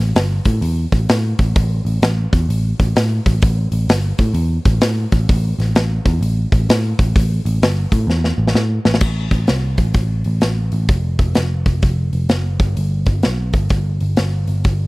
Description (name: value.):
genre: blues rock power trio and southern rock.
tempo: 128 BPM.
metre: 4/4.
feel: swing 64% on 8ths.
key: A minor.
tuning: A4 = 441 Hz.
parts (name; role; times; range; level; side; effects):
picked electric bass; bass; 0.0-14.9 s; F1 to A2; -17 LUFS; equal; none.
big rock drum kit; drums; 0.0-14.8 s; crash cymbal, hi-hat, kick drum, snare drum; -17 LUFS; equal; none.
room: little or no reverb.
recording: dry, close 1970s-style studio recording.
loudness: -14 LUFS.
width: side -22 dB against mid.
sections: 0.0-9.0 A section; 9.0-14.9 B section.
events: drum fill 8.1-9.0.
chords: none.